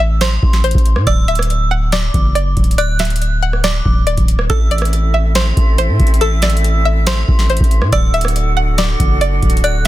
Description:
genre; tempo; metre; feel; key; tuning
hip hop, trap; 140 BPM; 4/4; half-time; unclear; A4 = 441 Hz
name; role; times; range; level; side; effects
string-like resonator pluck; melody; 0.0-9.9 s; A4 to F#5; -21 LUFS; equal; chorus, digital delay
metallic FM bell; second line; 0.0-9.9 s; C6 to F#6; -23 LUFS; right 3 dB; chorus, digital delay
long sustained 808-style bass; bass; 0.0-9.9 s; D1 to A2; -15 LUFS; equal; none
booming analog drum machine; drums; 0.2-9.9 s; hi-hat, kick drum, rim click, snare drum; -15 LUFS; equal; none
breathy flute section; sustained chords; 4.5-9.9 s; C4 to F#5; -24 LUFS; right 3 dB; none
room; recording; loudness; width
digital ambience; dense, heavily limited modern master; -12 LUFS; side -15 dB against mid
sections
0.0-9.9 A section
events
none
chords
0.0 Am; 1.1 D; 4.5 Am; 7.9 D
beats
0.21 0.64 | 1.07 1.50 1.93 2.35 | 2.78 3.21 3.64 4.07 | 4.50 4.92 5.35 5.78 | 6.21 6.64 7.07 7.50 | 7.92 8.35 8.78 9.21 | 9.64

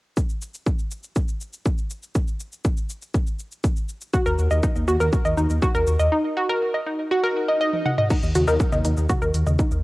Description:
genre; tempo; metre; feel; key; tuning
melodic techno; 121 BPM; 4/4; straight; Eb minor; A4 = 441 Hz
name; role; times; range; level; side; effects
electronic kick drum; drums; 0.2-9.7 s; none; -22 LUFS; equal; overdrive
techno drum kit; drums; 0.2-9.8 s; crash cymbal, hi-hat, shaker, toms; -30 LUFS; equal; overdrive, sidechain pumping on perc, sidechain pumping on toms, sidechain pumping on cymbals, sidechain pumping on hats
analog pluck; arpeggios; 4.1-9.6 s; Eb4 to Gb5; -22 LUFS; equal; chorus, sidechain pumping, cassette tape, tape echo
dark detuned saw bass; bass; 4.3-9.8 s; Eb2; -22 LUFS; equal; sidechain pumping
swell; sound effects; 7.3-8.1 s; none; -28 LUFS; right 1 dB; none
filtered dub chord stab; stabs; 8.5 s; Eb3 to Eb4; -32 LUFS; left 4 dB; chorus, cassette tape, sidechain pumping, tape echo
room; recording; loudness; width
digital ambience; home recording on cassette; -20 LUFS; side -20 dB against mid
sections
0.2-8.1 A section; 8.1-9.8 B section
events
swell 7.3-8.1; drum fill 7.7-8.1; filter sweep on synth pluck 8.1-9.8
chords
0.2 N.C.; 8.1 Eb5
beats
| 0.17 0.67 1.16 1.66 | 2.15 2.65 3.14 3.64 | 4.14 4.63 5.13 5.62 | 6.12 6.62 7.11 7.61 | 8.10 8.60 9.09 9.59

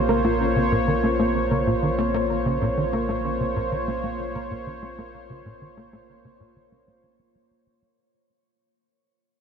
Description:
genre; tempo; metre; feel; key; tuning
ambient; 95 BPM; 4/4; straight; Bb minor; A4 = 440 Hz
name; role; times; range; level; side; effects
sweeping resonant pad; sustained chords; 0.0-8.0 s; Bb3 to Db5; -25 LUFS; equal; chorus, shimmer reverb
soft round pluck; arpeggios; 0.0-7.9 s; Bb3 to Db5; -30 LUFS; equal; chorus, auto-pan, analog delay, shimmer reverb
warm sub bass; bass; 0.0-8.0 s; Bb1; -32 LUFS; equal; none
tight sequencer bass; riff; 0.1-7.9 s; Bb2 to Bb3; -26 LUFS; equal; lush chorus, analog delay
room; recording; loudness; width
wet huge ambient reverb, RT60 7.8 s; in a vast, echoing space; -21 LUFS; side -7 dB against mid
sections
0.0-8.0 A section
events
fade-out on synth arpeggio sound 0.0-8.0; fade-out on sub bass 0.0-8.0; fade-out 0.0-8.0; filter sweep on analog synth bass 0.0-8.0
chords
0.0 Bbmadd9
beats
| 0.40 1.04 1.67 2.30 | 2.93 3.56 4.19 4.83 | 5.46 6.09 6.72 7.35

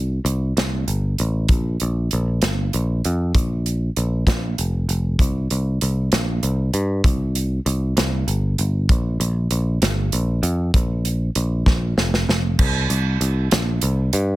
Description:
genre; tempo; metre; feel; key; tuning
folk rock and heartland rock; 65 BPM (dotted quarters); 6/8; straight; unclear; A4 = 440 Hz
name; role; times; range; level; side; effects
picked electric bass; bass; 0.0-14.4 s; F1 to G2; -20 LUFS; equal; none
natural country drum kit; drums; 0.3-14.3 s; crash cymbal, hi-hat, kick drum, snare drum; -20 LUFS; equal; none
room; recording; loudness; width
little or no reverb; dense, heavily limited modern master; -18 LUFS; side -17 dB against mid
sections
0.0-12.6 A section; 12.6-14.4 B section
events
drum fill 11.7-12.6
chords
none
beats
0.56 | 1.49 2.41 | 3.34 4.26 | 5.19 6.11 | 7.04 7.96 | 8.89 9.81 | 10.74 11.66 | 12.59 13.51

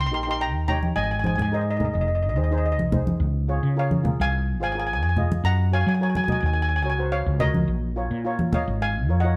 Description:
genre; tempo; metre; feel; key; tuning
calypso; 107 BPM; 4/4; straight; Db major; A4 = 440 Hz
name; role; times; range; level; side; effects
steel pan; melody; 0.0-9.4 s; Bb4 to C6; -29 LUFS; equal; none
woody fretless electric bass; bass; 0.0-9.4 s; F1 to Gb3; -26 LUFS; equal; none
steel pan; accompaniment; 0.1-9.4 s; Eb4 to Eb5; -34 LUFS; equal; none
congas; percussion; 0.7-8.7 s; none; -28 LUFS; equal; none
room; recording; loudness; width
moderate stone room reverb, RT60 1.1 s; band playing live in one room; -23 LUFS; mono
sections
0.0-9.4 A section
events
none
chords
0.0 Eb7; 1.0 Abadd9; 3.2 Db; 5.4 Gb; 7.7 Bbm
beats
0.40 | 0.96 1.52 2.08 2.64 | 3.20 3.76 4.33 4.89 | 5.45 6.01 6.57 7.13 | 7.69 8.25 8.81

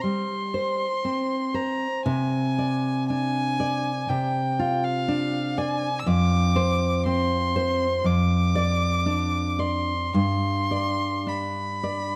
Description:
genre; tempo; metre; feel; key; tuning
romantic duo for violin and classical guitar; 53-61 BPM; 4/4; rubato; unclear; A4 = 443 Hz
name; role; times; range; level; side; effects
warm violin; melody; 0.0-12.2 s; F5 to E6; -30 LUFS; equal; none
nylon-string guitar; accompaniment; 0.0-12.2 s; F2 to D5; -26 LUFS; equal; none
room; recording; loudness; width
moderate recital hall reverb, RT60 1.4 s; dark, warm production; -25 LUFS; mono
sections
0.0-12.2 A section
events
none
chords
0.0 C5; 2.1 Dm7b5/C; 6.1 Dm7/F; 10.1 G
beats
0.03 1.05 | 2.07 3.10 4.10 5.09 | 6.08 7.07 8.06 9.07 | 10.15 11.28

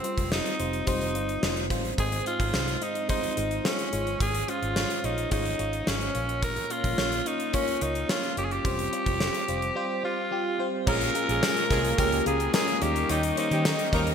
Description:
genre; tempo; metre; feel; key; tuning
1980s-style pop; 108 BPM; 4/4; straight; unclear; A4 = 440 Hz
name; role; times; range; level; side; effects
raspy alto saxophone; melody; 0.0-14.1 s; C4 to Bb4; -29 LUFS; equal; ping-pong delay
FM electric piano; accompaniment; 0.0-14.1 s; Ab2 to Eb5; -30 LUFS; equal; chorus, phaser
gated 80s drum kit; drums; 0.0-14.1 s; crash cymbal, hi-hat, kick drum, snare drum, tambourine; -29 LUFS; equal; none
vintage muted fingered electric bass; bass; 0.2-14.1 s; F1 to Eb3; -32 LUFS; equal; none
cranked stack guitar; accompaniment; 10.9-14.1 s; Bb2 to Eb4; -39 LUFS; right 1 dB; none
chorused pulse-width pad; sustained chords; 10.9-14.1 s; Bb4 to Db6; -37 LUFS; right 1 dB; none
clear horn section; stabs; 10.9-14.1 s; Eb3 to Bb4; -34 LUFS; right 2 dB; none
room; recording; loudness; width
wet lush hall reverb, RT60 2.2 s; bright 1980s-style digital production; -24 LUFS; side -7 dB against mid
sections
0.0-10.9 A section; 10.9-14.1 B section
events
none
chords
0.0 Fsus2; 2.0 Ab; 3.9 Db/Ab; 6.2 Bbm; 8.7 Fsus2; 10.9 Bbm7; 12.8 Eb7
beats
0.32 0.87 1.43 | 1.98 2.54 3.09 3.65 | 4.21 4.76 5.32 5.87 | 6.43 6.98 7.54 8.09 | 8.65 9.21 9.76 10.32 | 10.87 11.43 11.98 12.54 | 13.09 13.65

